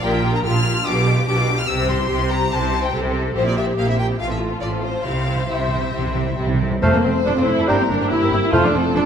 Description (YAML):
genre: quick classical-period movement for symphony orchestra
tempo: 142 BPM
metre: 4/4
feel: rubato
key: F major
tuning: A4 = 438 Hz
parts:
  - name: clear chamber violin section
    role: melody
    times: 0.0-9.0 s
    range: C4 to F6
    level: -25 LUFS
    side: left 4 dB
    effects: none
  - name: rich chamber violin section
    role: second line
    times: 0.0-9.1 s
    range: A3 to C5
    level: -25 LUFS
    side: left 3 dB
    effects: none
  - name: rich studio viola section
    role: accompaniment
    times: 0.0-9.0 s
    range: A3 to C5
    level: -23 LUFS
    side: right 1 dB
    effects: none
  - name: clear chamber cello section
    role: bass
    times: 0.0-9.0 s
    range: F2 to C3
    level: -26 LUFS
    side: right 2 dB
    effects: none
  - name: clear chamber double bass section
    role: bass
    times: 0.0-9.0 s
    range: F1 to C2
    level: -23 LUFS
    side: right 2 dB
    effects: none
  - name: timpani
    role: percussion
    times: 5.0-9.1 s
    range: F2 to C3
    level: -24 LUFS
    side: right 1 dB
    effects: none
  - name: bright oboe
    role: second line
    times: 6.8-8.7 s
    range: F5 to G5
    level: -29 LUFS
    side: right 2 dB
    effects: none
  - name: clear clarinet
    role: second line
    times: 6.8-8.7 s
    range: C5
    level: -27 LUFS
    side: left 1 dB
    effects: none
  - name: mellow hollow small flute group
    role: second line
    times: 6.8-8.7 s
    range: A5 to Bb5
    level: -29 LUFS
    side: left 2 dB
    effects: none
  - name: mellow bassoon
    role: accompaniment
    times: 6.8-8.7 s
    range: G3 to A3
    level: -26 LUFS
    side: right 1 dB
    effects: none
  - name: mellow French horn section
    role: sustained chords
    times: 6.8-9.1 s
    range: A3 to F4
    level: -24 LUFS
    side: left 3 dB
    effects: none
room: moderate scoring stage reverb, RT60 1.5 s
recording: none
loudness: -17 LUFS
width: side -8 dB against mid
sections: 0.0-6.8 A section; 6.8-9.1 B section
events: timpani fill 5.1-6.8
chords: 0.0 Gm7/Bb; 0.9 G7/B; 1.7 C; 3.4 C7/Bb; 4.2 F/A; 5.1 C; 6.8 F; 7.7 C7/G; 8.5 F